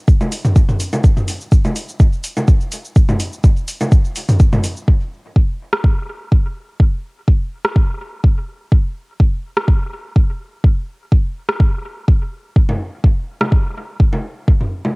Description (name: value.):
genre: techno.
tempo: 125 BPM.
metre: 4/4.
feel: swing 54% on 16ths.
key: none.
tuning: none.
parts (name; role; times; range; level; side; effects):
deep house drum kit; drums; 0.1-13.5 s; cabasa, hi-hat, rim click; -23 LUFS; equal; cassette tape, dub echo.
electronic kick drum; drums; 0.1-14.6 s; none; -12 LUFS; equal; cassette tape.
electronic bongos and toms; percussion; 0.2-4.6, 12.7-14.9 s; none; -19 LUFS; equal; overdrive, sidechain pumping on toms, cassette tape, sidechain pumping on perc.
room: digital ambience.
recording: home recording on cassette.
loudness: -14 LUFS.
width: side -33 dB against mid.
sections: 0.0-4.9 A section; 4.9-15.0 B section.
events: none.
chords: none.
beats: 0.08 0.56 | 1.04 1.52 2.00 2.48 | 2.96 3.44 3.92 4.40 | 4.88 5.36 5.84 6.32 | 6.80 7.28 7.76 8.24 | 8.72 9.20 9.68 10.16 | 10.64 11.12 11.60 12.08 | 12.56 13.04 13.52 14.00 | 14.48.